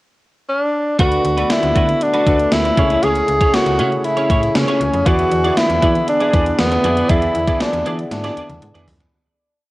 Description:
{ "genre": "1980s-style pop", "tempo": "118 BPM", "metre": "4/4", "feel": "straight", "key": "unclear", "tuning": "A4 = 442 Hz", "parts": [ { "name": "breathy tenor saxophone", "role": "melody", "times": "0.5-8.8 s", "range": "B3 to G#4", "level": "-17 LUFS", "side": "equal", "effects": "cassette tape" }, { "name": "warm concert grand piano", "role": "accompaniment", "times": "1.0-9.2 s", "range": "C#3 to D5", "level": "-24 LUFS", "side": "left 2 dB", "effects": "cassette tape" }, { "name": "chorused pulse-width pad", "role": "sustained chords", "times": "1.0-9.1 s", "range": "C#3 to G#4", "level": "-26 LUFS", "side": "equal", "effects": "cassette tape" }, { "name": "clean electric guitar", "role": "riff", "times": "1.0-9.0 s", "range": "A3 to D5", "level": "-25 LUFS", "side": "right 3 dB", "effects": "ensemble chorus, cassette tape" }, { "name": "slap-like FM bass", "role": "bass", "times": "1.0-9.1 s", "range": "C#2 to E3", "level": "-22 LUFS", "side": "equal", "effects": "none" }, { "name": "gated 80s digital drum machine", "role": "drums", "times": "1.0-9.1 s", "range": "hi-hat, kick drum, snare drum, toms", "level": "-19 LUFS", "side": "equal", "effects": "gated reverb, gated reverb snare, overdrive, cassette tape" } ], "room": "light reverb", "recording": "home recording on cassette", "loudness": "-14 LUFS", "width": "side -18 dB against mid", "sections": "0.0-1.0 pickup bar; 1.0-9.1 pre-chorus", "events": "fade-out 7.1-9.1; drum fill 8.1-9.1", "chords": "0.0 N.C.; 1.0 D6; 2.8 Amaj7/C#; 5.1 E7" }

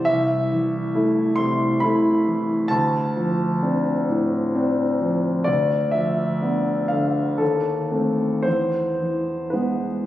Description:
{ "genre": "classical, romantic nocturne for solo piano", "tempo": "55-70 BPM", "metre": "3/4", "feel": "rubato", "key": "A minor", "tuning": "A4 = 440 Hz", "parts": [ { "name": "warm concert grand piano", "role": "solo", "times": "0.0-10.1 s", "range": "C2 to C6", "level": "-19 LUFS", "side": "equal", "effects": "none" } ], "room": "wet concert hall reverb, RT60 2.5 s", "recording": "recorded on a phone in the room, studio reverb, compression", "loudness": "-19 LUFS", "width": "side -14 dB against mid", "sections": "0.0-10.1 A section", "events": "none", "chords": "0.1 Am/C; 2.7 Dm7; 5.5 Bdim/D; 7.4 Adim/Eb; 8.5 E" }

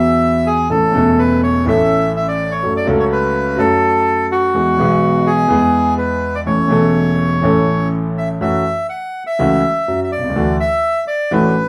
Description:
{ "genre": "tango", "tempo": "124 BPM", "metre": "4/4", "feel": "rubato", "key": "A major, F# minor from 8.4 s", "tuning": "A4 = 442 Hz", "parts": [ { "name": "bandoneon", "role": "melody", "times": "0.0-11.7 s", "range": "F#4 to F#5", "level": "-19 LUFS", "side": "equal", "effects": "none" }, { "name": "clear concert grand piano", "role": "accompaniment", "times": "0.0-11.5 s", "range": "E1 to A4", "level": "-17 LUFS", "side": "equal", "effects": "none" } ], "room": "wet studio reverb, RT60 0.5 s", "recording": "band playing live in one room", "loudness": "-15 LUFS", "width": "mono", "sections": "0.0-8.4 A section; 8.4-11.7 B section", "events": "none", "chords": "0.0 Eadd9; 0.7 A; 2.6 F#m; 4.5 E; 6.5 A; 8.4 F#m7; 10.4 Dadd9" }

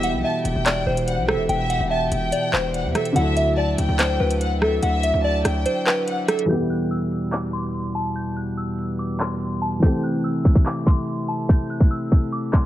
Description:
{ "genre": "hip hop, drill", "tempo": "144 BPM", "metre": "4/4", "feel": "half-time", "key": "E minor", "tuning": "A4 = 436 Hz", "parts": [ { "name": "soft synth bell", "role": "melody", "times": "0.0-12.7 s", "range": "A4 to G6", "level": "-25 LUFS", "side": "equal", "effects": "chorus, low-pass filter, digital delay" }, { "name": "rich symphonic violin section", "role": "second line", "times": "0.0-6.5 s", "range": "E5 to A5", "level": "-29 LUFS", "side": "left 1 dB", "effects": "digital delay" }, { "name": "dark baby grand piano", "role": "accompaniment", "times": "0.0-12.7 s", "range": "B2 to A4", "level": "-27 LUFS", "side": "equal", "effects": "low-pass filter" }, { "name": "pipe organ, sparkling flutes", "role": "sustained chords", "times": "0.0-12.7 s", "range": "E2 to G4", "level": "-27 LUFS", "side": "equal", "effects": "none" }, { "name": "distorted 808-style bass", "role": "bass", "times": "0.0-5.7 s", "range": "E1 to E2", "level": "-24 LUFS", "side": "equal", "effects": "distortion" }, { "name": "drill drum kit", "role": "drums", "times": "0.0-12.6 s", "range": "handclaps, hi-hat, kick drum, rim click", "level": "-19 LUFS", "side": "equal", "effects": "none" } ], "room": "light reverb, studio reverb", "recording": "vinyl crackle, low-pass filter", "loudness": "-19 LUFS", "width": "side -13 dB against mid", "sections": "0.0-6.5 A section; 6.5-12.7 B section", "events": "kick muted 5.7-6.5", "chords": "0.0 Em; 3.2 Dadd9; 6.5 Em; 9.8 C6" }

